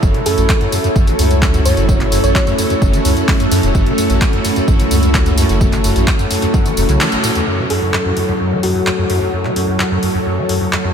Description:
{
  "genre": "acid house",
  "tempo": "129 BPM",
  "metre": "4/4",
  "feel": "straight",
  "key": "F# minor",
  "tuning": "A4 = 441 Hz",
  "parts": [
    { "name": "string machine, full ensemble", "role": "sustained chords", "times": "0.0-10.9 s", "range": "F#3 to C#5", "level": "-19 LUFS", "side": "right 1 dB", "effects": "ensemble chorus, sidechain pumping" },
    { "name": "liquid acid bass", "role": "riff", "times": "0.0-10.9 s", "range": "F#1 to F#3", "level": "-20 LUFS", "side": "equal", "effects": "tube saturation, lush chorus, sidechain pumping, ping-pong delay" },
    { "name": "warm sub bass", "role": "bass", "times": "0.0-7.0 s", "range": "E1 to F#2", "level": "-16 LUFS", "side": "equal", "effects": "sidechain pumping" },
    { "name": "electronic kick drum", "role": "drums", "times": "0.0-6.6 s", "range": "none", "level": "-15 LUFS", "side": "equal", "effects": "overdrive, small room ambience" },
    { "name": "punchy analog drum machine", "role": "drums", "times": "0.0-10.8 s", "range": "handclaps, hi-hat, tambourine", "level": "-21 LUFS", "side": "equal", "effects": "overdrive, small room ambience" },
    { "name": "warbly tape-like pad", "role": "texture", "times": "0.0-10.9 s", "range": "F#3 to C#5", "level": "-21 LUFS", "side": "equal", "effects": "chorus, built-in reverb, sidechain pumping" },
    { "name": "thumb-piano-like synth pluck", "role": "melody", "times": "0.3-2.4, 7.7-9.3 s", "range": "F#4 to C#5", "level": "-24 LUFS", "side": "equal", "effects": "chorus, analog delay" }
  ],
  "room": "moderate cathedral reverb, RT60 6.3 s",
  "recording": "dreamy mix soaked in reverb",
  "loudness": "-12 LUFS",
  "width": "side -7 dB against mid",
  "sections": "0.0-7.5 A section; 7.5-10.9 B section",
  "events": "drop 0.0-7.5; kick drops out 7.0-7.5; band accent 7.0",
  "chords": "0.0 F#m"
}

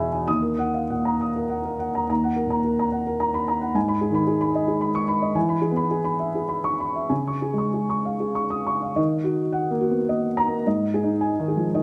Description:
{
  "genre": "neoclassical minimalist piano",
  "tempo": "94-113 BPM",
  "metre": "3/4",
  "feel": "rubato",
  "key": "Eb minor",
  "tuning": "A4 = 443 Hz",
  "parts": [
    { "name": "felt-muted upright piano", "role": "solo", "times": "0.0-11.8 s", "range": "Eb2 to Eb6", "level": "-24 LUFS", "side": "equal", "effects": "none" }
  ],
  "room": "light reverb",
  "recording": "none",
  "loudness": "-24 LUFS",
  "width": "mono",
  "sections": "0.0-2.1 A section; 2.1-9.0 B section; 9.0-11.8 C section",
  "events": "none",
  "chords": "0.3 Ebm; 3.8 Abm; 5.4 E; 7.1 Db; 9.0 Ebm; 10.7 Ab5"
}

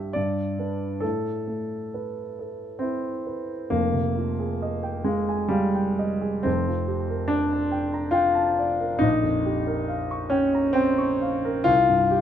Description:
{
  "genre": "classical, impressionist solo piano",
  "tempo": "62-71 BPM",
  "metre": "3/4",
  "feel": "rubato",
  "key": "A minor, F dorian from 3.7 s",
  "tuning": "A4 = 441 Hz",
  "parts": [
    { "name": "warm grand piano", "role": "solo", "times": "0.0-12.2 s", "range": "F1 to Db6", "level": "-22 LUFS", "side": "equal", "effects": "none" }
  ],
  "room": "light reverb",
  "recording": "close, detailed microphones",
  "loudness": "-22 LUFS",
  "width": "side -9 dB against mid",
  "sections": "0.0-3.7 A section; 3.7-12.2 B section",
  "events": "none",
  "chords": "0.2 G; 1.0 Amadd9; 3.7 Fm11; 6.5 Gm11/F; 9.0 Bbm6; 11.7 Csus4"
}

